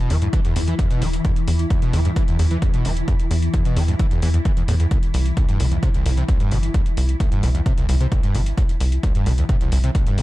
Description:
driving peak-time techno; 131 BPM; 4/4; straight; E minor; A4 = 440 Hz
overdriven acid bass; riff; 0.0-10.2 s; C2 to E3; -24 LUFS; equal; distortion, ensemble chorus, cassette tape, sidechain pumping
swarming drone; drone; 0.0-10.2 s; E3 to E4; -29 LUFS; left 2 dB; built-in reverb, sidechain pumping
tight sequencer bass; bass; 0.1-10.2 s; E1 to E2; -19 LUFS; equal; sidechain pumping
electronic hi-hat; drums; 0.1-10.2 s; -35 LUFS; left 2 dB
electronic kick drum; drums; 0.3-10.0 s; -20 LUFS; equal
little or no reverb; dark, warm production; -17 LUFS; side -17 dB against mid
0.0-10.2 A section
0.0 E5; 4.9 C5

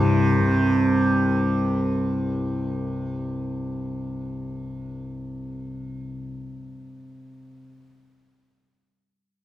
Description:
indian classical; 148 BPM; 7/4; straight; A4 = 441 Hz
sitar; melody; 0.0-1.0 s; barely audible
tanpura; drone; 0.0-7.6 s; C2 to C3; -23 LUFS; equal
moderate concert hall reverb, RT60 1.7 s; dark, warm production; -21 LUFS; side -14 dB against mid

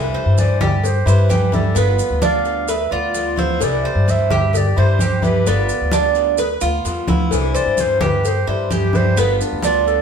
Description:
latin, Cuban son and guajira; 130 BPM; 4/4; straight; C major; A4 = 439 Hz
picked swing-style acoustic guitar; accompaniment; 0.0-10.0 s; C3 to F4; -26 LUFS; left 3 dB
upright bass; bass; 0.0-10.0 s; G1 to G2; -19 LUFS; left 1 dB
Cuban tres; arpeggios; 0.1-10.0 s; B3 to C5; -21 LUFS; right 3 dB
congas; percussion; 0.1-9.9 s; -23 LUFS; equal
warm clarinet; melody; 0.4-10.0 s; D4 to F5; -22 LUFS; right 2 dB
cowbell; percussion; 0.4-10.0 s; -27 LUFS; left 5 dB
maracas; percussion; 0.4-10.0 s; -31 LUFS; right 4 dB
wet studio reverb, RT60 0.9 s; band playing live in one room; -14 LUFS; side -7 dB against mid
0.0-10.0 A section
clarinet solo 0.0-10.0; drum fill 7.1
0.0 Cadd9; 1.8 G7; 3.6 Cadd9; 5.5 G7; 7.3 Cadd9; 9.2 G7

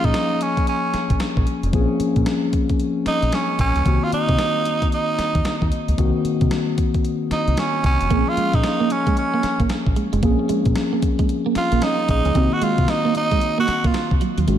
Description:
R&B, new jack swing; 113 BPM; 4/4; swing 62% on 16ths; Bb minor; A4 = 440 Hz
raspy tenor saxophone; melody; 0.0-14.1 s; Db4 to Gb4; -23 LUFS; right 3 dB; tape echo
mellow tine electric piano; accompaniment; 0.0-14.6 s; Eb3 to Ab4; -23 LUFS; left 4 dB
deep dub fingered electric bass; bass; 0.0-14.6 s; F1 to C3; -22 LUFS; equal
clean 12-bit digital drum machine; drums; 0.0-14.6 s; hi-hat, kick drum, snare drum; -23 LUFS; equal; overdrive
clean electric guitar; riff; 8.1-14.6 s; Gb3 to Db4; -24 LUFS; right 7 dB; wide subtle chorus
moderate echo chamber reverb, RT60 1.6 s; dark, warm production; -17 LUFS; side -10 dB against mid
0.0-14.6 A section
0.0 Bbm7; 3.9 Cm7b5; 8.1 Bbm7; 12.4 Cm7b5

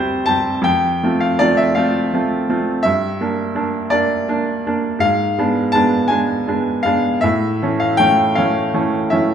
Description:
classical, romantic nocturne for solo piano; 51-57 BPM (dotted quarters); 12/8; rubato; A4 = 439 Hz
bright baby grand piano; solo; 0.0-9.3 s; D2 to A5; -15 LUFS; equal
wet recital hall reverb, RT60 1.3 s; -15 LUFS; side -8 dB against mid
0.0-9.3 A section
0.0 C5/D; 0.7 F; 2.8 Gm; 5.0 G#dim7; 7.2 A

